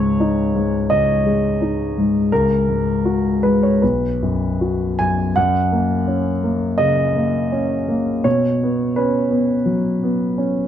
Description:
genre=neoclassical minimalist piano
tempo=83 BPM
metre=4/4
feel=rubato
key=unclear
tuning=A4 = 437 Hz
part: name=warm grand piano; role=solo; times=0.0-10.7 s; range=B1 to G#5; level=-16 LUFS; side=equal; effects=none
room=studio reverb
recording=dry, close 1970s-style studio recording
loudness=-16 LUFS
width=side -10 dB against mid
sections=0.0-5.4 A section; 5.4-10.7 B section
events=none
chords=0.0 G#5/C#; 2.3 F#add9/C#; 3.8 B5; 5.4 F#; 8.2 Bsus2

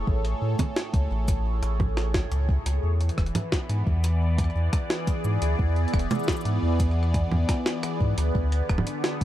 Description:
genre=IDM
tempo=87 BPM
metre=4/4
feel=straight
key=unclear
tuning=A4 = 441 Hz
part: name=phased analog pad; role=sustained chords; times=0.0-9.2 s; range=A2 to D5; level=-30 LUFS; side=equal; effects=phaser, chorus, vintage 12-bit sampler grit, sidechain pumping
part: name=warm sub bass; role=bass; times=0.0-9.2 s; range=D1 to A2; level=-24 LUFS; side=equal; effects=none
part: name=electronic kick drum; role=drums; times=0.1-9.2 s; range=none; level=-26 LUFS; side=equal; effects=none
part: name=jungle sampler-style drum kit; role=drums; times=0.2-9.2 s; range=congas, hi-hat, rim click, shaker, snare drum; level=-30 LUFS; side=right 1 dB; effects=none
room=little or no reverb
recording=dark, warm production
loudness=-22 LUFS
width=side -13 dB against mid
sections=0.0-9.2 A section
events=none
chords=0.0 Amaj7; 2.8 E7; 8.3 D5

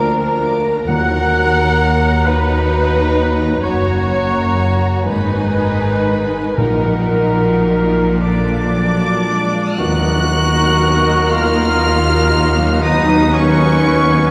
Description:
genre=classical, slow romantic movement for symphony orchestra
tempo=36-44 BPM (dotted quarters)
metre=6/8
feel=rubato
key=Eb minor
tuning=A4 = 440 Hz
part: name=rich studio violin section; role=melody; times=0.0-14.3 s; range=D5 to Gb6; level=-26 LUFS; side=equal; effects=none
part: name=concert flute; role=second line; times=0.0-14.3 s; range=Db5 to Bb5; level=-28 LUFS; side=equal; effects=none
part: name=mellow clarinet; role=second line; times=0.0-14.3 s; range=Db4 to Gb5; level=-24 LUFS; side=equal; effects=none
part: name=mellow cor anglais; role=second line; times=0.0-14.3 s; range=Db4 to Gb5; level=-26 LUFS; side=equal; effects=none
part: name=warm symphonic violin section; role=second line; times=0.0-14.3 s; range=D4 to Eb5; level=-28 LUFS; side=equal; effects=none
part: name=clear symphonic viola section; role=accompaniment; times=0.0-14.3 s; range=Bb3 to Gb5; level=-25 LUFS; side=equal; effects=none
part: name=dark bassoon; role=accompaniment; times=0.0-9.4 s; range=D3 to Gb3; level=-28 LUFS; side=equal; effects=none
part: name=mellow French horn section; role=sustained chords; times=0.0-14.3 s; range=Eb3 to Gb4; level=-26 LUFS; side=equal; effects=none
part: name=concert harp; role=arpeggios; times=0.0-14.3 s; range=Gb2 to Bb5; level=-25 LUFS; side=equal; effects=none
part: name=rich symphonic cello section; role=bass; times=0.0-14.3 s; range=D2 to Bb2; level=-24 LUFS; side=equal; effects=none
part: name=rich symphonic double bass section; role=bass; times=0.0-14.3 s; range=Gb1 to Eb2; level=-22 LUFS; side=equal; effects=none
part: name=timpani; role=percussion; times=0.9-2.2, 6.6-8.2 s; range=Bb2 to Eb3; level=-27 LUFS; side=equal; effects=none
part: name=mellow trumpet section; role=stabs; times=9.8-14.3 s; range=Bb4 to B4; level=-26 LUFS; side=equal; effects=none
part: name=tam-tam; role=percussion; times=9.8-13.8 s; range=none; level=-30 LUFS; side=equal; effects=none
room=wet church reverb, RT60 3.2 s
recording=recorded in a church or concert hall, vinyl crackle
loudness=-15 LUFS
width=mono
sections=0.0-9.8 A section; 9.8-14.3 B section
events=band accent 9.8-10.8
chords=0.0 Bb/D; 0.9 Ebm; 3.6 Gb; 5.1 Abm; 6.6 Ebm/Bb; 8.2 Bb; 9.8 Ebm; 12.8 B/D#

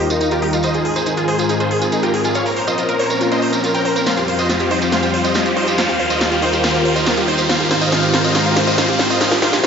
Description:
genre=uplifting trance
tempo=140 BPM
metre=4/4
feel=straight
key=unclear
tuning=A4 = 440 Hz
part: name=big supersaw lead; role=melody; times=0.0-9.7 s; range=Eb4 to G5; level=-20 LUFS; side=equal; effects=low-pass filter, analog delay
part: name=lush unison pad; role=sustained chords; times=0.0-9.7 s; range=Eb2 to C5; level=-20 LUFS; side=left 1 dB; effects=chorus, phaser
part: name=wide unison pluck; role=arpeggios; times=0.0-9.7 s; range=Eb4 to C5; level=-22 LUFS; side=right 1 dB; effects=analog delay
part: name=riser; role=sound effects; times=1.0-9.7 s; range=none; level=-24 LUFS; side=left 1 dB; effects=none
part: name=big-room dance drum kit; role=drums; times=0.1-9.7 s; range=hi-hat, snare drum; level=-22 LUFS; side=equal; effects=none
part: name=tambourine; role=percussion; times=0.1-9.7 s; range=none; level=-27 LUFS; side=right 3 dB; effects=none
room=wet lush hall reverb, RT60 1.7 s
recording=dreamy mix soaked in reverb, nothing above 7.7 kHz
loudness=-14 LUFS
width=side -6 dB against mid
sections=0.0-9.7 A section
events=build-up 0.0-9.7; filter sweep on synth pluck 0.0-9.7; riser 1.0-9.7; drum fill 4.1-9.7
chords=0.0 Ebadd9; 0.6 Ab6; 2.4 Bbmadd9; 4.1 Fsus2; 5.8 Ebadd9; 7.5 Ab6

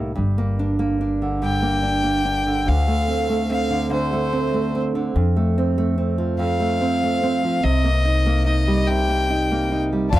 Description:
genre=acoustic folk-pop ballad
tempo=48 BPM (dotted quarters)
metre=6/8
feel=straight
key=unclear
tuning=A4 = 440 Hz
part: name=nylon-string guitar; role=accompaniment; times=0.0-10.2 s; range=D2 to F4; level=-21 LUFS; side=right 2 dB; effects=none
part: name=upright bass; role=bass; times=0.0-10.2 s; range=G1 to F2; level=-23 LUFS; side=left 1 dB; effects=none
part: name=bright violin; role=melody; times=1.4-10.2 s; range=C5 to G5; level=-24 LUFS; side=left 3 dB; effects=none
part: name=dark studio string section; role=sustained chords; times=10.1-10.2 s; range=F4 to A5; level=-22 LUFS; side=left 4 dB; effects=none
part: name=soft brush drum kit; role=drums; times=10.1-10.2 s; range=hi-hat, kick drum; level=-19 LUFS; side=left 1 dB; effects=none
room=little or no reverb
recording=dry, close 1970s-style studio recording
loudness=-18 LUFS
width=side -15 dB against mid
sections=0.0-10.1 A section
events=none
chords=0.2 Gm; 2.7 Dm7; 5.2 F; 7.6 Cm7

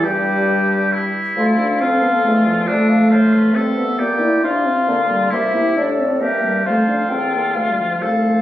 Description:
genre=quick classical-period movement for wind quintet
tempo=136 BPM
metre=3/4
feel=rubato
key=F major from 4.0 s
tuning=A4 = 438 Hz
part: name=concert flute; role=melody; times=0.0-8.4 s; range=G4 to G5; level=-21 LUFS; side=left 2 dB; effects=none
part: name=clear oboe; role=second line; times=0.0-8.4 s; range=D4 to A4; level=-21 LUFS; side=equal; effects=none
part: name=bright clarinet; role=accompaniment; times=0.0-8.4 s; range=G3 to C5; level=-27 LUFS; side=right 3 dB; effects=none
part: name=mellow French horn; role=accompaniment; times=0.0-8.4 s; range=F3 to E4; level=-18 LUFS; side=equal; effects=none
part: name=mellow bassoon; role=bass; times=0.0-8.4 s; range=C2 to D3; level=-24 LUFS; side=right 1 dB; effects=none
room=wet recital hall reverb, RT60 1.6 s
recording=recorded on a phone in the room, club reverb, nothing above 10.4 kHz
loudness=-14 LUFS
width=side -13 dB against mid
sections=0.0-8.4 A section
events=none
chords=0.0 Em/G; 1.4 Dm; 2.7 Dm/F; 4.0 Gm7/Bb; 5.3 C7; 6.7 F; 7.5 Dm

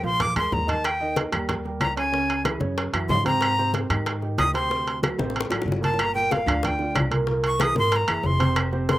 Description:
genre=Afro-Cuban jazz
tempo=186 BPM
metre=4/4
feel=straight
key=Eb major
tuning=A4 = 439 Hz
part: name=breathy bright jazz flute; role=melody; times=0.0-9.0 s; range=F5 to Eb6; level=-24 LUFS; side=left 1 dB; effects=none
part: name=warm concert grand piano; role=accompaniment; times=0.0-9.0 s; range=Bb2 to F5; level=-28 LUFS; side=right 3 dB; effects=none
part: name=upright bass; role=bass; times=0.0-9.0 s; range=F1 to Ab2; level=-28 LUFS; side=equal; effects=none
part: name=bongos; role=percussion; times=0.2-9.0 s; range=none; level=-32 LUFS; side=left 5 dB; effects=slapback echo
part: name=congas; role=percussion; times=0.2-9.0 s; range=none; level=-29 LUFS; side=left 1 dB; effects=none
part: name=timbales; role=percussion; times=0.2-9.0 s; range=none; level=-29 LUFS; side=right 3 dB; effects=none
part: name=claves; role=percussion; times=0.4-8.7 s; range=none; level=-34 LUFS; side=left 3 dB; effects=none
room=little or no reverb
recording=recorded outdoors, with no room sound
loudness=-21 LUFS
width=side -15 dB against mid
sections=0.8-9.0 A section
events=drum fill 0.0-0.8, 5.2-6.0; flute solo 0.0-9.0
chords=0.2 Bb7; 0.8 Eb; 2.1 Dbm; 2.8 Gbsus2; 3.4 Abmaj9; 4.7 D7; 6.0 Gm7; 7.3 Caug7

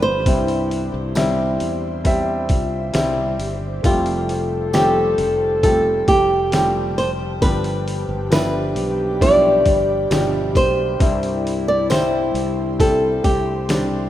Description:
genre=pop ballad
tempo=67 BPM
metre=4/4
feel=straight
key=unclear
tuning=A4 = 439 Hz
part: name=flamenco guitar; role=melody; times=0.0-14.1 s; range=F4 to D5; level=-20 LUFS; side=right 1 dB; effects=none
part: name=warm grand piano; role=accompaniment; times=0.0-14.1 s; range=G2 to E5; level=-22 LUFS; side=equal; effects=none
part: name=ethereal airy pad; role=sustained chords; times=0.0-14.1 s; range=G4 to D6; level=-33 LUFS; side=left 2 dB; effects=ensemble chorus, built-in reverb
part: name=fretless electric bass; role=bass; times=0.0-14.1 s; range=F1 to E2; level=-26 LUFS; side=equal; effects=none
part: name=dark French horn section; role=second line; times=0.3-14.1 s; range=E4 to A4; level=-25 LUFS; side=left 2 dB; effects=digital delay
part: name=trip hop sampler-style drum kit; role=drums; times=0.3-13.9 s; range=hi-hat, kick drum, snare drum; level=-21 LUFS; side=equal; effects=none
part: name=tambourine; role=percussion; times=1.2-13.9 s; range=none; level=-40 LUFS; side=right 5 dB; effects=none
room=moderate lush hall reverb, RT60 2.1 s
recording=rough home demo mix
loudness=-16 LUFS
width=side -12 dB against mid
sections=0.0-14.1 A section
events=none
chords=0.3 C; 3.8 Fadd9; 7.4 G7; 11.0 C

